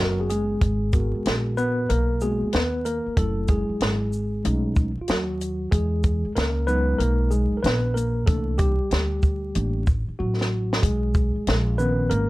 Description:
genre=hip hop, jazz-hop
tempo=94 BPM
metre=4/4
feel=swing 63% on 16ths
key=G# minor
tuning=A4 = 440 Hz
part: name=mellow tine electric piano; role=accompaniment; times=0.0-12.3 s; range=D#3 to B4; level=-25 LUFS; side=equal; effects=fast stereo tremolo
part: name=upright bass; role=bass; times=0.0-12.3 s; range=F#1 to E2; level=-24 LUFS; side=equal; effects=none
part: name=compact cocktail drum kit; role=drums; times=0.3-12.3 s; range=hi-hat, kick drum, shaker, snare drum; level=-23 LUFS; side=equal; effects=none
room=light reverb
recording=vinyl crackle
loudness=-21 LUFS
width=side -18 dB against mid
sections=0.6-12.3 A section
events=tine electric piano solo 0.6-12.3; drum fill 10.2-10.8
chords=0.0 G#m9; 3.2 F#m9; 4.4 B13; 5.7 Emaj9; 8.3 C13; 10.8 Bmaj7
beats=| 0.61 1.25 1.89 2.53 | 3.17 3.81 4.44 5.08 | 5.72 6.36 7.00 7.63 | 8.27 8.91 9.55 10.19 | 10.83 11.46 12.10

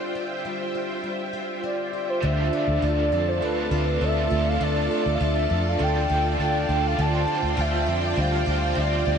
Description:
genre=dream pop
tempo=101 BPM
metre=4/4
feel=straight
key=D minor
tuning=A4 = 440 Hz
part: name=string machine, violas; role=sustained chords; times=0.0-9.2 s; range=F4 to A5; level=-28 LUFS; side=equal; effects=ensemble chorus
part: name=picked plugged-in twelve-string acoustic guitar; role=arpeggios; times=0.0-9.2 s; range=D3 to F4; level=-31 LUFS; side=left 2 dB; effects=wide subtle chorus, ping-pong delay
part: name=warbly nostalgic lead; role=melody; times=1.6-9.2 s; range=B4 to A5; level=-26 LUFS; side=equal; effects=chorus, ping-pong delay
part: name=raw garage guitar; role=accompaniment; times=2.2-9.2 s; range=D3 to F4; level=-32 LUFS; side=right 4 dB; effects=overdrive, tremolo, wide subtle chorus
part: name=vintage muted fingered electric bass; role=bass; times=2.2-9.2 s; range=D2 to F2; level=-25 LUFS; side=equal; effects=none
part: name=vibraphone with medium mallets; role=texture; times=2.2-5.8 s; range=A3 to F4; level=-36 LUFS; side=right 2 dB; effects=ping-pong delay
room=wet huge ambient reverb, RT60 8.5 s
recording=dreamy mix soaked in reverb, nothing above 10.3 kHz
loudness=-21 LUFS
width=side -7 dB against mid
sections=0.0-2.2 A section; 2.2-9.2 B section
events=break 0.0-2.2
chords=0.0 G7sus4/D; 2.2 Dm; 7.0 G7sus4/D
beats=0.45 1.04 1.64 | 2.23 2.83 3.42 4.01 | 4.61 5.20 5.79 6.39 | 6.98 7.58 8.17 8.77

